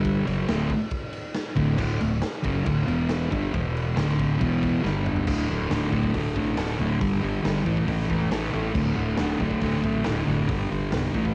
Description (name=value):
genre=garage rock duo or trio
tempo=138 BPM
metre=4/4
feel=straight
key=D major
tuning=A4 = 440 Hz
part: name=fuzz guitar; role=riff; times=0.0-11.3 s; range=D2 to A3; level=-26 LUFS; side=equal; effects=distortion, cassette tape
part: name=woody fretless electric bass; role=bass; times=0.0-11.3 s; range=D1 to B1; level=-34 LUFS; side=equal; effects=tube saturation, lush chorus
part: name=raw garage drum kit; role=drums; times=0.0-11.3 s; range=crash cymbal, hi-hat, kick drum, ride cymbal, snare drum, toms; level=-33 LUFS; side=equal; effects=cassette tape
room=light reverb, small room reverb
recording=home recording on cassette, nothing above 10.8 kHz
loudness=-25 LUFS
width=mono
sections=0.0-5.3 A section; 5.3-11.3 B section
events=drum fill 4.8-5.3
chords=0.3 D; 2.9 E5; 3.3 G5; 3.5 E5; 4.0 D5; 4.4 E5; 4.8 G5; 5.3 D5; 7.0 G5; 7.7 A5; 8.8 D5; 10.5 G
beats=| 0.05 0.49 0.92 1.36 | 1.79 2.23 2.67 3.10 | 3.54 3.97 4.41 4.84 | 5.28 5.71 6.14 6.58 | 7.01 7.45 7.88 8.32 | 8.75 9.19 9.62 10.05 | 10.49 10.92